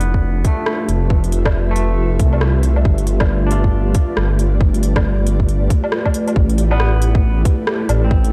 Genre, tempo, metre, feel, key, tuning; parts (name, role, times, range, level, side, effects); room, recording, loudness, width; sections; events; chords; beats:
future garage; 137 BPM; 4/4; swing 61% on 16ths; A4 = 439 Hz
twangy electric guitar; accompaniment; 0.0-8.3 s; A3 to F4; -30 LUFS; equal; vintage 12-bit sampler grit, sidechain pumping, analog delay
ethereal airy pad; sustained chords; 0.0-8.3 s; A3 to E5; -25 LUFS; equal; ensemble chorus, built-in reverb, tremolo, sidechain pumping
dark detuned saw bass; bass; 0.0-8.3 s; F1 to C2; -18 LUFS; equal; tube saturation, sidechain pumping
garage drum kit; drums; 0.0-8.3 s; hi-hat, rim click, woodblock; -26 LUFS; equal
electronic kick drum; drums; 0.1-8.2 s; -19 LUFS; equal
little or no reverb; dry, gritty hardware recording, transformer saturation; -16 LUFS; mono
0.0-6.4 A section; 6.4-8.3 B section
filter sweep on clean electric guitar 0.0-6.4
0.0 Fmaj9#11; 2.9 G9; 6.4 Am9
0.23 0.67 | 1.10 1.54 1.98 2.42 | 2.86 3.29 3.73 4.17 | 4.61 5.05 5.48 5.92 | 6.36 6.80 7.24 7.67 | 8.11